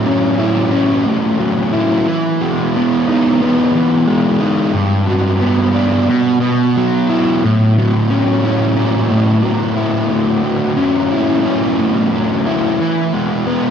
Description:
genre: rock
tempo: 90 BPM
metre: 4/4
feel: straight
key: A lydian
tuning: A4 = 439 Hz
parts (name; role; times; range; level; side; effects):
- fuzz guitar; solo; 0.0-13.7 s; G2 to E4; -12 LUFS; equal; distortion, wide subtle chorus, tape echo
room: wet plate reverb, RT60 2.4 s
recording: dreamy mix soaked in reverb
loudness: -12 LUFS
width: side -8 dB against mid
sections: 0.0-7.4 A section; 7.4-13.7 B section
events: none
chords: 0.0 A6; 2.1 Emaj7; 4.7 Gmaj7; 6.1 Bsus4; 7.4 A6; 12.8 E

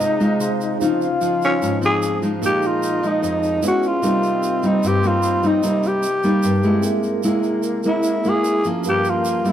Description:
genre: bossa nova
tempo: 149 BPM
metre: 4/4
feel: straight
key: unclear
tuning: A4 = 439 Hz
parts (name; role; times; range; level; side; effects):
- growling tenor saxophone; melody; 0.0-9.5 s; Db4 to Ab4; -20 LUFS; equal; none
- bright alto flute; second line; 0.0-9.5 s; Bb3 to F4; -26 LUFS; left 4 dB; none
- nylon-string guitar; accompaniment; 0.0-9.5 s; F2 to F4; -20 LUFS; equal; none
- tine electric piano; accompaniment; 0.0-9.5 s; C3 to C6; -28 LUFS; right 3 dB; medium stereo tremolo
- tube shaker; percussion; 0.0-9.5 s; none; -36 LUFS; right 6 dB; none
room: moderate echo chamber reverb, RT60 2.3 s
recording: none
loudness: -17 LUFS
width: side -10 dB against mid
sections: 0.0-9.5 A section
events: tine electric piano fill 0.2-0.8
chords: 0.0 Fm7/C; 0.8 Dbmaj9; 2.4 Bb7sus4; 3.6 Dbm7; 4.0 Cm7; 6.8 C7b13; 8.8 Gm7b5

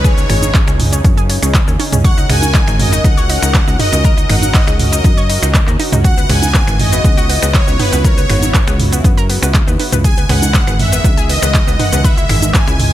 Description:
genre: progressive house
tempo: 120 BPM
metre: 4/4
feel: straight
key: unclear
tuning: A4 = 440 Hz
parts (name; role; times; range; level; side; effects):
- soft supersaw; melody; 0.0-12.9 s; B4 to G#5; -19 LUFS; equal; tape echo
- lush unison pad; sustained chords; 0.0-12.9 s; C#3 to A#4; -24 LUFS; equal; chorus, sidechain pumping
- analog pluck; arpeggios; 0.0-12.8 s; B3 to C#5; -24 LUFS; left 1 dB; chorus, sidechain pumping, ping-pong delay
- tight sequencer bass; bass; 0.0-12.9 s; G#1 to F#2; -16 LUFS; equal; sidechain pumping
- deep house drum kit; drums; 0.0-12.9 s; finger snaps, handclaps, hi-hat, shaker; -19 LUFS; equal; overdrive, sidechain pumping on hats, sidechain pumping on perc
- electronic kick drum; drums; 0.0-12.6 s; none; -12 LUFS; equal; overdrive
- downlifter; sound effects; 0.0-2.0 s; none; -31 LUFS; equal; none
- electronic toms and congas; percussion; 0.3-12.9 s; none; -18 LUFS; right 3 dB; sidechain pumping on toms, sidechain pumping on perc
room: digital ambience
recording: none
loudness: -10 LUFS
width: side -13 dB against mid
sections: 0.0-12.9 A section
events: none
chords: 0.0 C#sus2; 2.0 D#m7; 6.0 Emaj7

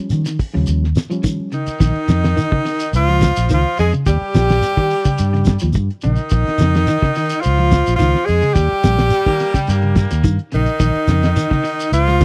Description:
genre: afrobeat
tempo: 107 BPM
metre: 4/4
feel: straight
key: Bb dorian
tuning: A4 = 440 Hz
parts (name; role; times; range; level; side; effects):
- reed electric piano; accompaniment; 0.0-1.5 s; F3 to Db4; -26 LUFS; equal; none
- fingered electric bass; bass; 0.1-12.2 s; Bb1 to Eb3; -19 LUFS; equal; none
- cloth-damped thuddy drum kit; drums; 0.1-12.2 s; hi-hat, kick drum, snare drum; -21 LUFS; equal; vintage 12-bit sampler grit
- shekere; percussion; 0.1-12.2 s; none; -26 LUFS; equal; none
- electric guitar at the edge of break-up; arpeggios; 0.3-12.2 s; Db3 to Ab3; -25 LUFS; equal; ensemble chorus
- edgy tenor saxophone; melody; 1.5-12.2 s; Eb4 to Ab4; -22 LUFS; equal; none
- raspy tenor saxophone; second line; 1.5-12.2 s; Eb3 to Ab3; -27 LUFS; equal; none
- bright baritone saxophone; second line; 9.1-10.4 s; G3 to Bb3; -32 LUFS; equal; none
room: small room ambience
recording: dry, close 1970s-style studio recording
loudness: -16 LUFS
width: mono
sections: 0.0-1.8 A section; 1.8-12.2 B section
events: none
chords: 0.0 Eb7; 1.8 Bbm; 4.1 Eb7; 6.3 Bbm; 8.6 Eb7; 10.8 Bbm (rootless)

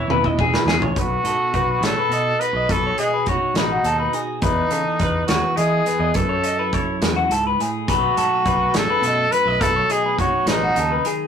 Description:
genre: math rock and midwest emo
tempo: 70 BPM (dotted quarters)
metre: 6/8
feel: straight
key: unclear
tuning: A4 = 439 Hz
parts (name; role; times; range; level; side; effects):
- clear trumpet; melody; 0.0-11.1 s; D#4 to B4; -21 LUFS; equal; none
- twelve-string electric guitar; accompaniment; 0.0-11.3 s; E2 to B4; -28 LUFS; right 4 dB; phaser
- electric guitar through a small old amp; arpeggios; 0.0-11.3 s; F#4 to D#5; -22 LUFS; left 3 dB; phaser
- picked electric bass; bass; 0.0-11.0 s; E1 to E3; -26 LUFS; equal; none
- loose indie drum kit; drums; 0.1-11.2 s; hi-hat, kick drum, snare drum, toms; -24 LUFS; equal; none
room: moderate studio reverb, RT60 0.5 s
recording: rough rehearsal-room recording, tube saturation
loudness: -17 LUFS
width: side -7 dB against mid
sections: 1.0-11.3 A section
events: drum fill 0.1-1.0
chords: 0.0 Emaj7; 1.0 B7; 4.4 Emaj7; 6.2 F#m7; 7.9 B7

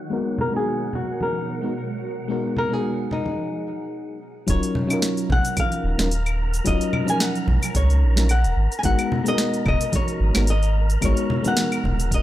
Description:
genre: sunset chillout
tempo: 110 BPM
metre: 4/4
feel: swing 56% on 16ths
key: Eb minor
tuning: A4 = 440 Hz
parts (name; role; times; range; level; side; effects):
- shimmering ambient pad; sustained chords; 0.0-3.4 s; Cb3 to Bb4; -33 LUFS; right 1 dB; chorus, built-in reverb, phaser
- wind-like tuned noise texture; texture; 0.0-12.2 s; Gb3 to Bb5; -36 LUFS; right 2 dB; built-in reverb
- mellow FM electric piano; accompaniment; 0.1-12.2 s; F3 to Bb4; -26 LUFS; moving between left 4 dB and right 4 dB; chorus, auto-pan, low-pass filter
- flamenco guitar; melody; 0.4-12.2 s; Eb4 to Ab5; -27 LUFS; left 2 dB; vintage 12-bit sampler grit, analog delay
- congas; percussion; 0.4-12.0 s; none; -29 LUFS; left 1 dB; none
- round analog bass; bass; 4.5-12.2 s; Eb1 to Db2; -20 LUFS; equal; none
- electronic kick drum; drums; 4.5-12.2 s; none; -24 LUFS; equal; none
- smooth R&B drum kit; drums; 4.5-12.2 s; cabasa, claves, hi-hat, snare drum; -27 LUFS; equal; low-pass filter on hats, low-pass filter on perc, low-pass filter on snare
room: little or no reverb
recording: dry, gritty hardware recording, low-pass filter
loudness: -20 LUFS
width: side -14 dB against mid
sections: 0.0-4.5 A section; 4.5-12.2 B section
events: filter sweep on FM electric piano 0.0-4.5; filter sweep 0.0-4.5; break 3.4-4.5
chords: 0.0 Abm9; 4.5 Ebm9; 8.6 Abm9

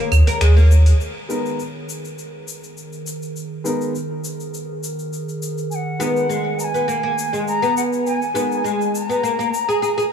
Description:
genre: organic downtempo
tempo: 102 BPM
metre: 4/4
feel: swing 53% on 16ths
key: G# minor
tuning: A4 = 438 Hz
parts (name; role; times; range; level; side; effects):
- warbly tape-like pad; sustained chords; 0.0-10.1 s; D#3 to C#5; -29 LUFS; right 1 dB; chorus, built-in reverb
- oud; arpeggios; 0.0-0.7, 6.0-10.1 s; G#3 to A#4; -22 LUFS; equal; digital delay
- round analog bass; bass; 0.1-0.9 s; D#2; -10 LUFS; equal; tube saturation
- deep house drum kit; drums; 0.1-10.1 s; claves, finger snaps, hi-hat, shaker; -30 LUFS; left 1 dB; overdrive
- felt-muted upright piano; accompaniment; 1.3-8.6 s; G#3 to A#4; -28 LUFS; left 1 dB; digital delay
- bright reedy bansuri; melody; 5.7-10.1 s; F#5 to A#5; -22 LUFS; left 1 dB; digital delay
room: light reverb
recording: small room ambience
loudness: -17 LUFS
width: side -8 dB against mid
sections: 0.0-1.0 A section; 1.0-10.1 B section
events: band accent 0.4; filter sweep on ambient pad 1.0-10.1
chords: 0.0 G#sus2; 1.0 G#madd9

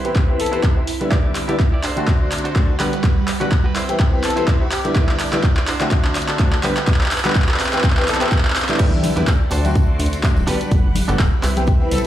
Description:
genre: filtered disco house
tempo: 125 BPM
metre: 4/4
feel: swing 55% on 16ths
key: unclear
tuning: A4 = 440 Hz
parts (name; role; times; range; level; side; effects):
- clear baby grand piano; accompaniment; 0.0-12.1 s; D3 to G4; -23 LUFS; left 1 dB; phaser, sidechain pumping, low-pass filter
- phased string machine; sustained chords; 0.0-12.1 s; G3 to D6; -29 LUFS; right 2 dB; ensemble chorus, phaser, vintage 12-bit sampler grit, sidechain pumping, low-pass filter
- direct-recorded clean electric guitar; riff; 0.0-12.1 s; C4 to D5; -28 LUFS; right 3 dB; sidechain pumping, low-pass filter
- plucky analog bass; bass; 0.0-12.0 s; D1 to C3; -24 LUFS; equal; sidechain pumping, high-pass filter, low-pass filter
- punchy analog drum machine; drums; 0.0-12.1 s; crash cymbal, handclaps, hi-hat; -23 LUFS; equal; sidechain pumping on hats, sidechain pumping on cymbals
- electronic kick drum; drums; 0.2-11.8 s; none; -16 LUFS; equal; none
- bright horn section; melody; 0.4-0.6, 4.2-5.0, 8.1-8.3, 11.9-12.1 s; G4 to A4; -28 LUFS; left 1 dB; vintage 12-bit sampler grit, sidechain pumping, low-pass filter, dub echo
- tambourine and congas; percussion; 8.8-12.0 s; none; -28 LUFS; left 3 dB; sidechain pumping on perc, low-pass filter on perc
room: light reverb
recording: played on a big sound system in a bare room, large studio reverb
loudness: -15 LUFS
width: side -12 dB against mid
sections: 0.0-8.8 A section; 8.8-12.1 B section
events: build-up 0.0-8.8; drum fill 0.0-8.8; drop 8.8-12.1; clean electric guitar fill 11.9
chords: 0.0 Cmaj7; 1.1 Em7; 1.8 D7; 2.8 Gmaj7; 3.8 Cmaj7; 5.0 Em7; 5.7 D7; 6.6 Gmaj7; 7.6 Cmaj7; 8.8 Em7; 9.5 D7; 10.5 Gmaj7; 11.4 Cmaj7

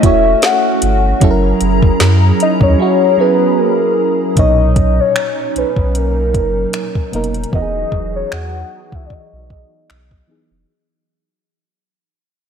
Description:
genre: contemporary R&B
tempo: 76 BPM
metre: 4/4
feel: swing 54% on 16ths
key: B major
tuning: A4 = 441 Hz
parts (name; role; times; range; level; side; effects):
- soft octave-layered synth lead; melody; 0.0-10.3 s; A#4 to F#5; -16 LUFS; left 2 dB; chorus, phaser, low-pass filter, ping-pong delay
- FM electric piano with auto-pan; accompaniment; 0.0-10.7 s; A#2 to C#5; -19 LUFS; right 2 dB; phaser, low-pass filter
- hollow soft pad; sustained chords; 0.0-10.7 s; E3 to A#5; -20 LUFS; right 2 dB; ensemble chorus, sidechain pumping, low-pass filter
- saturated sub bass; bass; 0.0-10.7 s; E1 to F#2; -16 LUFS; equal; none
- smooth R&B drum kit; drums; 0.0-10.3 s; finger snaps, hi-hat, kick drum, snare drum; -16 LUFS; equal; none
room: moderate lush hall reverb, RT60 2.5 s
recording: dreamy mix soaked in reverb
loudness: -11 LUFS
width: side -7 dB against mid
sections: 0.0-4.4 A section; 4.4-10.7 B section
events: drums muted 2.8-4.4; fade-out 4.4-10.7; filter sweep 4.4-10.7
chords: 0.0 A6; 1.2 F#7; 4.4 Bmaj9; 7.5 Emaj7

